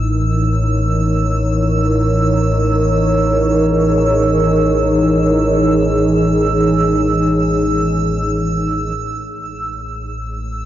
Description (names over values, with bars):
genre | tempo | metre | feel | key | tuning
dark ambient drone | free time | none | none | unclear | A4 = 440 Hz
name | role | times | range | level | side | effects
dark analog pad | sustained chords | 0.0-10.7 s | E3 to C#5 | -15 LUFS | equal | chorus
deep rumbling drone | drone | 0.0-10.7 s | A1 to A2 | -19 LUFS | left 1 dB | built-in reverb
icy glass pad | texture | 0.0-10.7 s | E6 | -24 LUFS | right 4 dB | chorus, built-in reverb
room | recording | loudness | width
wet huge ambient reverb, RT60 7.9 s | worn, warbling old tape, cassette tape, warbly pitch drift | -13 LUFS | side -12 dB against mid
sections
0.0-9.0 A section; 9.0-10.7 B section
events
none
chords
0.0 E; 9.0 Am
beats
free time